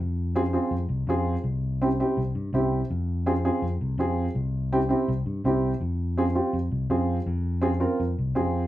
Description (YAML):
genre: latin, cumbia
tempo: 165 BPM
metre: 4/4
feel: straight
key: F harmonic minor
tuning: A4 = 440 Hz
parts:
  - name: fingered electric bass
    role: bass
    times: 0.0-8.7 s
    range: C2 to G2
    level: -27 LUFS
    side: left 1 dB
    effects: none
  - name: dark upright piano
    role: accompaniment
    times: 0.4-8.6 s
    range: C4 to Bb4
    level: -25 LUFS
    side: right 1 dB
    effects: none
room: wet studio ambience, RT60 0.5 s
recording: heard from further back in the room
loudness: -23 LUFS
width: side -14 dB against mid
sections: 0.0-8.7 A section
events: none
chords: 0.0 Fm; 1.4 C; 2.9 Fm; 4.4 C; 5.8 Fm